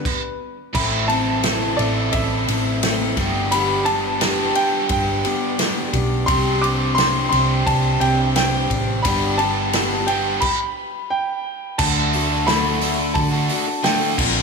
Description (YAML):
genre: folk rock and heartland rock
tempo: 87 BPM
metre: 4/4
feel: straight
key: unclear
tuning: A4 = 440 Hz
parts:
  - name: clear baby grand piano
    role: melody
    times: 0.0-14.4 s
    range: B4 to D6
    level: -23 LUFS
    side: equal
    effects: slapback echo, analog delay
  - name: picked steel-string acoustic guitar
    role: accompaniment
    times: 0.0-14.4 s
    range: G2 to Bb4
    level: -26 LUFS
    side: left 4 dB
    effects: slapback echo
  - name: natural country drum kit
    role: drums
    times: 0.1-14.3 s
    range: crash cymbal, hi-hat, kick drum, ride cymbal, snare drum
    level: -23 LUFS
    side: equal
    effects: none
  - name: biting overdriven guitar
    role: riff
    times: 0.7-14.4 s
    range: G2 to A4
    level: -24 LUFS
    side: right 2 dB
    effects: slapback echo
  - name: hollow-body short-scale fingered electric bass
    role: bass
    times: 0.7-14.4 s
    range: G1 to D3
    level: -24 LUFS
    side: right 1 dB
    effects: none
room: moderate lush hall reverb, RT60 1.9 s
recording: big arena sound, small room ambience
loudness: -17 LUFS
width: side -4 dB against mid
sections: 0.7-11.8 A section; 11.8-14.4 B section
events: stop 0.1-0.7, 10.4-11.8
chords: 0.0 N.C.; 0.7 Am; 3.2 G; 6.3 Csus2; 9.1 G; 11.8 D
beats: 0.05 | 0.75 1.44 2.14 2.83 | 3.52 4.22 4.91 5.60 | 6.29 6.98 7.67 8.36 | 9.05 9.74 10.43 11.11 | 11.80 12.48 13.17 13.85